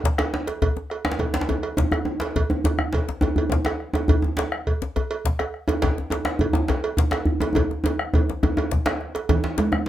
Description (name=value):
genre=west african traditional, West African drum ensemble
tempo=138 BPM (dotted quarters)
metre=12/8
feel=straight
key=none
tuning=none
part: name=bombo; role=percussion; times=0.0-9.9 s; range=none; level=-25 LUFS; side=left 1 dB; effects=none
part: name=djembe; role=percussion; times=0.1-9.7 s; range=none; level=-28 LUFS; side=left 4 dB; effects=none
part: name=cowbell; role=percussion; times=0.2-9.7 s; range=none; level=-29 LUFS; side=right 5 dB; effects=none
part: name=djembe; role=percussion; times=0.2-9.9 s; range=none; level=-23 LUFS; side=right 1 dB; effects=none
part: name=congas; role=percussion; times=9.3-9.7 s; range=none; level=-25 LUFS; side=right 3 dB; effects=none
room=little or no reverb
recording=none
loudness=-21 LUFS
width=side -12 dB against mid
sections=0.0-9.3 A section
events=drum fill 7.6-9.3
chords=none